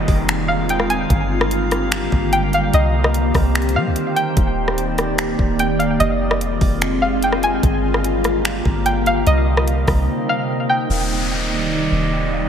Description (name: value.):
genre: hip hop, atmospheric cloud-rap.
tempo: 147 BPM.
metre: 4/4.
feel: half-time.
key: C minor.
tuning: A4 = 440 Hz.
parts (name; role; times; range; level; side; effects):
string-like resonator pluck; melody; 0.0-12.5 s; Eb5 to Ab5; -22 LUFS; equal; chorus, low-pass filter, tape echo.
ethereal airy pad; sustained chords; 0.0-12.5 s; C3 to D5; -21 LUFS; equal; ensemble chorus, built-in reverb, phaser, sidechain pumping, low-pass filter.
soft 808-style bass; bass; 0.0-12.5 s; Eb1 to G3; -21 LUFS; equal; none.
downlifter; sound effects; 0.0-1.1, 10.9-12.5 s; none; -27 LUFS; equal; none.
drifting glass-harmonics texture; texture; 0.0-12.5 s; G3 to F5; -28 LUFS; right 2 dB; chorus, built-in reverb.
trap drum kit; drums; 0.1-10.0 s; finger snaps, hi-hat, kick drum, rim click; -21 LUFS; equal; none.
room: wet church reverb, RT60 3.0 s.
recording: dreamy mix soaked in reverb.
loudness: -16 LUFS.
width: side -8 dB against mid.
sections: 0.0-10.9 A section; 10.9-12.5 B section.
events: break 10.1-10.9; filter sweep 10.9-12.5.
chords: 0.0 Fm7; 1.1 Gm7; 2.7 Cm7; 4.4 Ebmaj7; 6.0 Fm7; 7.6 Gm7; 9.3 Cm7; 10.9 Ebmaj7.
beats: 0.29 0.69 | 1.10 1.51 1.92 2.33 | 2.73 3.14 3.55 3.96 | 4.37 4.78 5.18 5.59 | 6.00 6.41 6.82 7.22 | 7.63 8.04 8.45 8.86 | 9.27 9.67 10.08 10.49 | 10.90 11.31 11.71 12.12.